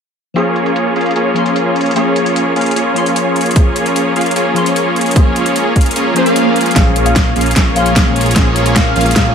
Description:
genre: future bass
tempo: 150 BPM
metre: 4/4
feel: half-time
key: Bb minor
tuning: A4 = 439 Hz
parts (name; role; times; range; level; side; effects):
- glassy digital keys; accompaniment; 0.3-9.3 s; F3 to C6; -19 LUFS; left 4 dB; chorus, sidechain pumping, digital delay
- supersaw chords; riff; 0.4-9.3 s; Bb3 to F5; -14 LUFS; right 1 dB; sidechain pumping, low-pass filter, digital delay
- dubstep drum kit; drums; 0.4-9.2 s; hi-hat, snare drum; -18 LUFS; left 1 dB; low-pass filter on hats, studio reverb, low-pass filter on snare
- shimmering ambient pad; sustained chords; 4.4-9.3 s; Ab3 to Bb4; -25 LUFS; right 1 dB; none
- electronic kick drum; drums; 3.6-9.2 s; none; -12 LUFS; equal; overdrive, studio reverb
- swell and riser; sound effects; 6.1-9.3 s; none; -21 LUFS; right 1 dB; none
- warm velvety synth lead; melody; 6.8-9.3 s; F5; -20 LUFS; left 2 dB; chorus, sidechain pumping, digital delay
- fat analog bass; bass; 6.8-9.3 s; Bb1; -17 LUFS; equal; sidechain pumping
room: light reverb, digital ambience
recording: none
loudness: -10 LUFS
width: side -7 dB against mid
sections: 0.4-6.8 A section; 6.8-9.3 B section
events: swell 6.1-6.8; kick drops out 6.4-6.8; build-up 6.8-9.3; drum fill 6.8-9.3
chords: 0.4 Bbm7

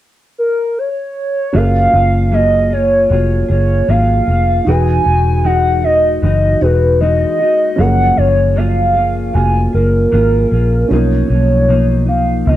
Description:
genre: indie pop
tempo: 77 BPM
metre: 4/4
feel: straight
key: F# major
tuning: A4 = 440 Hz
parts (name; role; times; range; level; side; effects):
- hollow clarinet-like synth lead; melody; 0.4-12.6 s; A#4 to G#5; -15 LUFS; equal; analog chorus, slapback echo
- dark upright piano; accompaniment; 1.5-12.6 s; E#3 to B4; -24 LUFS; right 3 dB; none
- mellow electric guitar; accompaniment; 1.5-12.6 s; B2 to G#4; -18 LUFS; left 1 dB; lush chorus, vibrato effect
- vintage muted fingered electric bass; bass; 1.5-12.6 s; E1 to C#2; -14 LUFS; equal; none
room: little or no reverb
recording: dry, close 1970s-style studio recording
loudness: -11 LUFS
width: side -13 dB against mid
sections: 0.0-1.5 A section; 1.5-12.6 B section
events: none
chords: 0.0 N.C.; 1.5 F#maj9; 4.7 Emaj9; 7.8 F#maj9; 10.9 Bmaj9#11

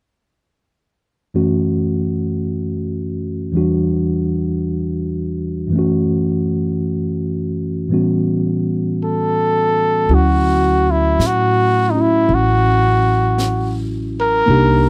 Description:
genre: jazz ballad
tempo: 55 BPM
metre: 4/4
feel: swing 68% on 8ths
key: D major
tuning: A4 = 440 Hz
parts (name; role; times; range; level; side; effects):
- bright tine electric piano; accompaniment; 1.3-14.9 s; E2 to G4; -20 LUFS; equal; none
- breathy trumpet; melody; 9.0-14.9 s; Eb4 to Bb4; -18 LUFS; equal; none
- upright bass; bass; 10.1-14.9 s; A1 to A2; -20 LUFS; equal; none
- jazz brush drum kit; drums; 10.1-14.9 s; brushed snare drum, hi-hat, snare drum; -35 LUFS; equal; none
room: light reverb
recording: dry, close 1970s-style studio recording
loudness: -17 LUFS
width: mono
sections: 1.3-10.1 A section; 10.1-14.9 B section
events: none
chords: 1.3 F#m7; 3.5 Em9; 5.7 F#m7; 7.9 A13; 10.1 Dmaj7

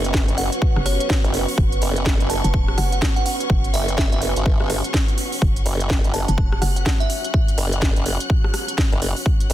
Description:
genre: bass house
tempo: 125 BPM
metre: 4/4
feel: swing 61% on 16ths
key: unclear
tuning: A4 = 440 Hz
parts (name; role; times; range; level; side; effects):
- deep dark ambient pad; sustained chords; 0.0-9.2 s; C#4 to B4; -30 LUFS; right 4 dB; chorus, built-in reverb, vintage 12-bit sampler grit, sidechain pumping
- formant-sweep wobble bass; bass; 0.0-9.5 s; F#1 to G1; -22 LUFS; equal; chorus, tube saturation, sidechain pumping
- garage drum kit; drums; 0.0-9.5 s; hi-hat, rim click, snare drum; -26 LUFS; equal; none
- warm studio string section; texture; 0.0-9.5 s; C#4 to F#6; -30 LUFS; left 2 dB; sidechain pumping
- electronic kick drum; drums; 0.1-9.4 s; none; -19 LUFS; equal; none
- glassy synth bell; melody; 0.4-7.3 s; C#5 to A5; -29 LUFS; right 2 dB; chorus, digital delay
- hollow knocking FM bass; bass; 0.8-6.8 s; E1 to F#1; -22 LUFS; equal; overdrive, sidechain pumping
room: little or no reverb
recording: dense, heavily limited modern master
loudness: -17 LUFS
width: side -13 dB against mid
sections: 0.0-9.5 A section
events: none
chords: 0.0 F#5

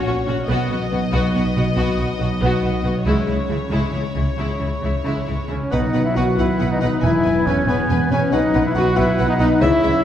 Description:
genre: cinematic, heroic adventure film score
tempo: 93 BPM (dotted quarters)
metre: 6/8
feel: straight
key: B major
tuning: A4 = 441 Hz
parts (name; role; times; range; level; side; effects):
- warm symphonic violin section; melody; 0.0-9.9 s; C#5 to G#5; -30 LUFS; left 3 dB; none
- rich studio violin section; second line; 0.0-9.9 s; E4 to E5; -28 LUFS; left 3 dB; none
- warm symphonic viola section; accompaniment; 0.0-9.9 s; G#3 to C#4; -28 LUFS; equal; none
- concert harp; arpeggios; 0.0-10.0 s; A#2 to B5; -25 LUFS; left 2 dB; none
- clear symphonic double bass section; bass; 0.1-9.9 s; E1 to C#2; -24 LUFS; right 2 dB; none
- warm symphonic cello section; bass; 0.1-9.9 s; E2 to C#3; -25 LUFS; right 2 dB; none
- concert flute; second line; 5.5-10.0 s; B4 to F#5; -27 LUFS; left 1 dB; none
- mellow French horn section; sustained chords; 5.5-10.0 s; B3 to F#4; -21 LUFS; left 3 dB; none
- clear trumpet; stabs; 5.5-10.0 s; B3 to F#4; -24 LUFS; right 1 dB; none
- clear oboe; second line; 5.7-10.0 s; E5 to G#5; -28 LUFS; equal; none
- warm clarinet; second line; 5.7-10.0 s; B4 to C#5; -28 LUFS; equal; none
room: wet scoring stage reverb, RT60 1.6 s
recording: heard from further back in the room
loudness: -16 LUFS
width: side -10 dB against mid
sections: 0.0-5.7 A section; 5.7-10.0 B section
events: build-up 0.0-5.7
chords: 0.5 B; 3.1 C#m; 5.7 B; 7.0 E; 8.3 B5

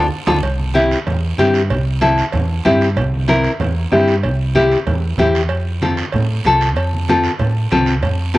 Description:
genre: latin, cumbia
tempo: 190 BPM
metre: 4/4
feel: straight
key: unclear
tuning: A4 = 440 Hz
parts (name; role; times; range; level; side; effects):
- nylon-string guitar; accompaniment; 0.0-8.4 s; C4 to Bb4; -16 LUFS; left 2 dB; none
- hollow-body short-scale fingered electric bass; bass; 0.0-8.4 s; C2 to A2; -18 LUFS; right 1 dB; none
- congas; percussion; 0.3-8.4 s; none; -25 LUFS; right 2 dB; none
- guiro; percussion; 0.3-8.4 s; none; -28 LUFS; right 5 dB; none
- timbales and cowbell; percussion; 0.3-8.2 s; none; -25 LUFS; right 3 dB; none
room: light reverb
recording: worn, warbling old tape, cassette tape, warbly pitch drift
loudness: -14 LUFS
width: side -17 dB against mid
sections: 0.4-8.4 A section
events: drum fill 0.0-0.4; band accent 0.0-0.4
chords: 0.4 C; 5.5 F

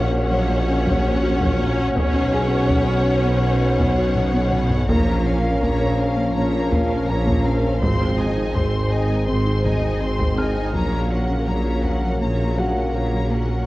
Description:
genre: cinematic, hybrid orchestral and electronic film score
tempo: 82 BPM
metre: 4/4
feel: straight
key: unclear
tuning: A4 = 440 Hz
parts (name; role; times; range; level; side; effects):
- warm symphonic violin section; melody; 0.0-13.7 s; F5 to C6; -30 LUFS; left 2 dB; none
- dark symphonic violin section; second line; 0.0-13.7 s; Bb4 to Eb5; -30 LUFS; left 2 dB; none
- warm symphonic viola section; accompaniment; 0.0-13.7 s; Bb3 to Eb4; -29 LUFS; right 1 dB; none
- mellow trombone section; sustained chords; 0.0-13.5 s; Db3 to C4; -29 LUFS; right 1 dB; none
- warm French horn section; sustained chords; 0.0-13.7 s; C4 to Bb4; -27 LUFS; left 2 dB; none
- soft round pluck; arpeggios; 0.0-13.6 s; Gb3 to C#5; -30 LUFS; left 1 dB; none
- mellow tuba; bass; 0.0-13.6 s; Ab1 to B1; -27 LUFS; right 1 dB; none
- rich symphonic cello section; bass; 0.0-13.6 s; Ab2 to B2; -26 LUFS; right 1 dB; none
- sub bass with octave; bass; 0.0-13.7 s; Ab1 to B1; -26 LUFS; equal; none
- warm studio double bass section; bass; 0.0-13.6 s; Ab1 to B1; -27 LUFS; right 1 dB; none
- felt-muted upright piano; texture; 0.0-13.7 s; Gb4 to F6; -32 LUFS; left 1 dB; digital delay
- taiko ensemble; drums; 0.9-12.2 s; none; -27 LUFS; equal; none
room: moderate concert hall reverb, RT60 2.3 s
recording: worn, warbling old tape, cassette tape, warbly pitch drift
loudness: -18 LUFS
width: side -18 dB against mid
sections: 0.0-13.7 A section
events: drum fill 4.2-4.9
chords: 0.0 Gb/Bb; 2.0 Bsus2; 4.9 Bbm; 7.8 Ab; 10.7 Gb/Bb

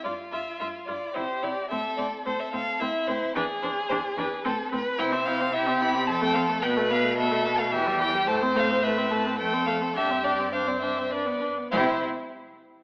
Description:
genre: quick classical-period movement for string quartet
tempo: 109 BPM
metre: 3/4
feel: straight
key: C major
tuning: A4 = 436 Hz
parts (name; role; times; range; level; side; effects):
- clear violin; melody; 0.0-12.0 s; B4 to B5; -29 LUFS; left 1 dB; none
- rich violin; second line; 0.0-12.0 s; E4 to C5; -28 LUFS; equal; none
- clear viola; accompaniment; 0.0-12.0 s; E3 to F4; -29 LUFS; equal; none
- rich cello; bass; 0.1-12.0 s; E2 to C3; -33 LUFS; equal; none
room: wet recital hall reverb, RT60 1.7 s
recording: AM radio sound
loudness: -23 LUFS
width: side -29 dB against mid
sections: 0.0-11.7 A section; 11.7-12.8 B section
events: slowing down 7.4-11.7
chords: 0.0 Dmadd11/G; 1.2 C; 1.7 Am; 3.4 E7; 4.4 Am; 5.0 C; 6.1 F; 6.6 G13/B (rootless); 7.7 Em; 8.3 Am; 9.4 F; 10.0 Gsus4; 11.1 G; 11.7 C

